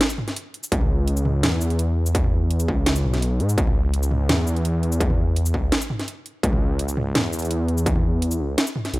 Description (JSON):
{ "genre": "half-time drum and bass", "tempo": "168 BPM", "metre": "4/4", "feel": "half-time", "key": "C# minor", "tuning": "A4 = 441 Hz", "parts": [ { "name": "drum and bass drum kit", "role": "drums", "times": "0.0-9.0 s", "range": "hi-hat, shaker, snare drum, toms", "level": "-24 LUFS", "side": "equal", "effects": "overdrive" }, { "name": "dark detuned saw bass", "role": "bass", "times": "0.7-9.0 s", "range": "B1 to G#2", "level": "-21 LUFS", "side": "equal", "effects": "none" }, { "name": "electronic kick drum", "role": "drums", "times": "0.7-7.9 s", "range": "none", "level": "-23 LUFS", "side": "equal", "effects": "distortion" } ], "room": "little or no reverb", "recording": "dry, gritty hardware recording, transformer saturation", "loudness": "-19 LUFS", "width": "side -20 dB against mid", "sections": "0.0-9.0 A section", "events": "none", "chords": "none" }